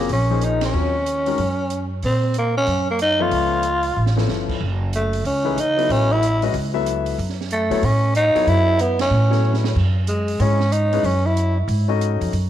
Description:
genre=modal jazz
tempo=186 BPM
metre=4/4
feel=swing 63% on 8ths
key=Eb dorian, F# dorian from 4.6 s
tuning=A4 = 440 Hz
part: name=growling tenor saxophone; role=melody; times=0.0-11.6 s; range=G#3 to F4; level=-20 LUFS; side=right 1 dB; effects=tape echo
part: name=warm grand piano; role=accompaniment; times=0.0-12.3 s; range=Eb3 to Fb5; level=-26 LUFS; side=left 10 dB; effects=none
part: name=upright bass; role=bass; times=0.0-12.5 s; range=F#1 to C#3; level=-21 LUFS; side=right 1 dB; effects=none
part: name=open jazz drum kit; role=drums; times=0.1-12.4 s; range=crash cymbal, hi-hat, kick drum, ride cymbal, snare drum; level=-32 LUFS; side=right 7 dB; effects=none
room=moderate echo chamber reverb, RT60 1.8 s, small room ambience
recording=1960s-style stereo with parts hard left and right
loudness=-17 LUFS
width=side -11 dB against mid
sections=0.0-4.6 A section; 4.6-12.5 B section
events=band accent 0.6, 8.9; drum fill 4.0-4.3, 9.4-9.8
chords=0.0 Ebm7; 3.3 Db7alt; 4.6 F#m7; 9.8 C#5/F#

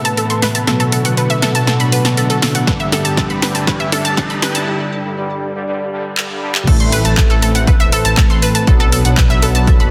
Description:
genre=melodic techno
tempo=120 BPM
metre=4/4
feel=straight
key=A dorian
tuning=A4 = 440 Hz
part: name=warm analog pad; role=sustained chords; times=0.0-9.9 s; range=C3 to B4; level=-27 LUFS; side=equal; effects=chorus, sidechain pumping
part: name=analog synth brass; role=stabs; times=0.0-9.9 s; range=G2 to B3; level=-21 LUFS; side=equal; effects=chorus, sidechain pumping, digital delay
part: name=bowed-like drone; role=drone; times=0.0-4.7 s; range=A2 to A3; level=-32 LUFS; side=equal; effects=none
part: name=house drum kit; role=drums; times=0.0-9.9 s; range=crash cymbal, handclaps, hi-hat, snare drum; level=-22 LUFS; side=equal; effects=sidechain pumping on hats, sidechain pumping on cymbals
part: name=riser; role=sound effects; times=2.3-4.7 s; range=none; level=-31 LUFS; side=equal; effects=none
part: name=ethereal airy pad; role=texture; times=0.0-9.9 s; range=C4 to A5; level=-30 LUFS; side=equal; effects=none
part: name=analog pluck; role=arpeggios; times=0.1-9.8 s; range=A4 to C6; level=-22 LUFS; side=equal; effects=chorus, sidechain pumping, digital delay
part: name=electronic kick drum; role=drums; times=2.7-9.8 s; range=none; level=-16 LUFS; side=equal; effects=none
part: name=swelling detuned saw bass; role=bass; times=6.7-9.9 s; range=E1 to B1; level=-22 LUFS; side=equal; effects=sidechain pumping
room=moderate recital hall reverb, RT60 1.6 s, digital ambience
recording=dense, heavily limited modern master, high-pass filter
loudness=-14 LUFS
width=mono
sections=0.0-6.7 A section; 6.7-9.9 B section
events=build-up 0.0-6.7; drum fill 0.0-4.7, 6.2-6.7; filter sweep on analog polysynth 0.0-6.7; break 4.7-6.7; drop 6.7-9.9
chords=0.0 Amadd9; 0.7 Bm; 2.7 G; 4.7 G5; 6.7 Amadd9; 8.7 Bm

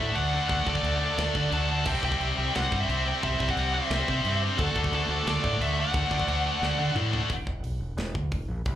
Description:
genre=heavy metal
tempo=176 BPM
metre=4/4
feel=straight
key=E minor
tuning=A4 = 440 Hz
part: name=high-gain lead guitar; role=melody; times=0.0-6.9 s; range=A4 to A5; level=-31 LUFS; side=equal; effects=distortion, slapback echo, ping-pong delay
part: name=high-gain lead guitar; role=second line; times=0.0-6.9 s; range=F#4 to F#5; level=-36 LUFS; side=right 6 dB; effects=distortion, slapback echo
part: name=heavy high-gain guitar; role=riff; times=0.0-7.3 s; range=C3 to D4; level=-29 LUFS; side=left 8 dB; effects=distortion, slapback echo
part: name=heavy high-gain guitar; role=riff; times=0.0-7.3 s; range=C3 to D4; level=-34 LUFS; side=right 14 dB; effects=distortion, slapback echo
part: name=growling fingered electric bass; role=bass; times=0.0-8.8 s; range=E1 to D3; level=-30 LUFS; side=equal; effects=overdrive
part: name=tight metal drum kit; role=drums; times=0.2-8.7 s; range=china cymbal, crash cymbal, hi-hat, kick drum, snare drum, toms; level=-34 LUFS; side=equal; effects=none
room=little or no reverb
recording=live gig heard through the venue's PA, club reverb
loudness=-24 LUFS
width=side -11 dB against mid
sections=0.0-7.3 A section; 7.3-8.8 B section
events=drum fill 6.6-7.3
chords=0.0 D; 1.9 C; 4.6 D; 7.3 E5

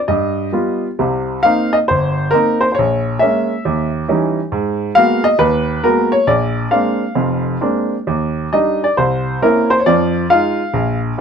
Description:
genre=solo jazz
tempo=136 BPM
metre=4/4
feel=swing 66% on 8ths, rubato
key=unclear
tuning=A4 = 438 Hz
part: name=clear baby grand piano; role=solo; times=0.1-11.2 s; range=F1 to F5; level=-13 LUFS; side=equal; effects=none
room=light reverb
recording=none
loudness=-13 LUFS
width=side -7 dB against mid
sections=0.0-1.0 A section; 1.0-11.2 B section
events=none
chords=0.1 G7; 1.0 Cm7; 2.8 Bbm7b5; 3.7 Eb7b9; 4.5 Abm9; 6.3 Bb9; 8.1 Ebmaj7; 9.0 C7b9; 9.9 Fm7

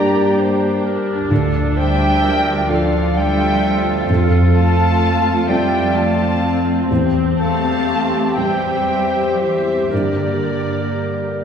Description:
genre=cinematic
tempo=38-44 BPM (dotted quarters)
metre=6/8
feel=rubato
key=D minor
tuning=A4 = 440 Hz
part: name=muted studio violin section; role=melody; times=0.0-11.4 s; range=D5 to Bb5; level=-25 LUFS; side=left 2 dB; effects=none
part: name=clear clarinet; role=second line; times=0.0-11.4 s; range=G4 to D5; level=-24 LUFS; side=right 1 dB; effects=none
part: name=mellow hollow silver concert flute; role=second line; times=0.0-11.4 s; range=D5 to Bb5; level=-25 LUFS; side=right 1 dB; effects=none
part: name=muted studio violin section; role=second line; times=0.0-11.4 s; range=Bb4 to G5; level=-29 LUFS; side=equal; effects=none
part: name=felt-muted upright piano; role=accompaniment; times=0.0-11.4 s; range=D2 to C5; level=-20 LUFS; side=equal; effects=none
part: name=muted studio viola section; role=accompaniment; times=0.0-11.3 s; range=Bb3 to G4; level=-23 LUFS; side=equal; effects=none
part: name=mellow French horn section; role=sustained chords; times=0.0-11.4 s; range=F3 to D4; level=-23 LUFS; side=left 3 dB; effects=none
part: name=muted studio cello section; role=bass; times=0.0-11.4 s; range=D3 to Bb3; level=-24 LUFS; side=right 3 dB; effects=none
part: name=muted studio double bass section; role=bass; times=0.0-11.4 s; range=D2 to G2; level=-24 LUFS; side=right 1 dB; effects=none
room=wet scoring stage reverb, RT60 1.6 s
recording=heard from further back in the room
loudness=-14 LUFS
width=side -7 dB against mid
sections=0.0-11.4 A section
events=none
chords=0.0 Gm; 1.3 Dm; 4.1 F; 6.9 C/E; 9.9 Gm

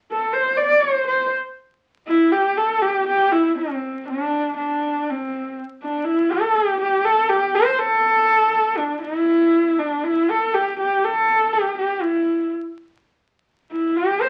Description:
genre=mongolian traditional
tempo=121 BPM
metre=4/4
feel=straight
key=C gong mode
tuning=A4 = 441 Hz
part: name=dark horsehead fiddle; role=melody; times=0.1-14.3 s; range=C4 to D5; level=-20 LUFS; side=equal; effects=none
room=wet studio ambience, RT60 0.5 s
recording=very old 78 rpm record, vinyl crackle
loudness=-20 LUFS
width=mono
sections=0.0-6.1 A section; 6.1-14.3 B section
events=none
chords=none

